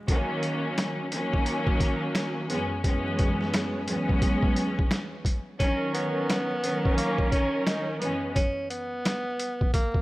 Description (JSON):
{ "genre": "hip hop, boom-bap hip-hop", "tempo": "87 BPM", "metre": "4/4", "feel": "swing 62% on 16ths", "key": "unclear", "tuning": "A4 = 440 Hz", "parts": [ { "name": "warm studio string section", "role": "accompaniment", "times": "0.1-8.3 s", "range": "E2 to A#4", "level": "-27 LUFS", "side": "equal", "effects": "cassette tape, high-pass filter, low-pass filter" }, { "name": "boom bap sampler-style drum kit", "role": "drums", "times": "0.1-10.0 s", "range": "hi-hat, kick drum, snare drum", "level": "-27 LUFS", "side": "equal", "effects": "overdrive, vintage 12-bit sampler grit" }, { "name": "warm tenor saxophone", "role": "melody", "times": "5.6-10.0 s", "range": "A#3 to D#4", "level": "-30 LUFS", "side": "equal", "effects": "high-pass filter, low-pass filter" } ], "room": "light reverb, studio reverb", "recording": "vinyl crackle", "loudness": "-24 LUFS", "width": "side -18 dB against mid", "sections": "0.0-10.0 A section", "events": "none", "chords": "0.1 D#m7; 2.5 F#9sus4; 3.9 E69; 5.6 Bmaj7; 8.0 F#9sus4; 9.4 N.C.", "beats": "| 0.08 0.77 1.46 2.15 | 2.84 3.53 4.22 4.91 | 5.60 6.29 6.98 7.67 | 8.36 9.05 9.74" }